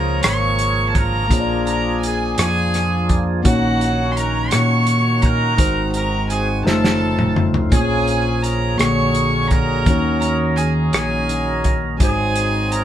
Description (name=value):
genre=slow gospel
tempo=56 BPM (dotted quarters)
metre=6/8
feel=straight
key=unclear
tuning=A4 = 441 Hz
part: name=bright horn section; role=melody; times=0.0-12.8 s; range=C4 to Db5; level=-24 LUFS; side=equal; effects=none
part: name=warm violin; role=melody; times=0.0-12.8 s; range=Gb5 to Db6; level=-25 LUFS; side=right 3 dB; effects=none
part: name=mellow tine electric piano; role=accompaniment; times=0.0-12.8 s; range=Ab2 to D5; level=-22 LUFS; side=left 2 dB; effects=none
part: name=tonewheel organ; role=sustained chords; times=0.0-12.8 s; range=Db3 to Db5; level=-26 LUFS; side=right 2 dB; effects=slow rotary speaker, overdrive
part: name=fingered electric bass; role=bass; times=0.0-12.8 s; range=F1 to Bb2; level=-22 LUFS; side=equal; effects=none
part: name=warm soul drum kit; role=drums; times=0.2-12.8 s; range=hi-hat, kick drum, rim click, snare drum, toms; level=-19 LUFS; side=equal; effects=none
room=moderate studio ambience, RT60 0.5 s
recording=band playing live in one room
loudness=-15 LUFS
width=side -10 dB against mid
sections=0.0-12.8 A section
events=drum fill 6.7-7.7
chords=0.0 Db6; 1.3 Bb7; 3.5 Ebm7/Bb; 5.6 Ab7; 6.7 F7b13; 7.7 Bbm7; 8.8 Bb7alt; 9.9 Ebm7; 12.0 Ab7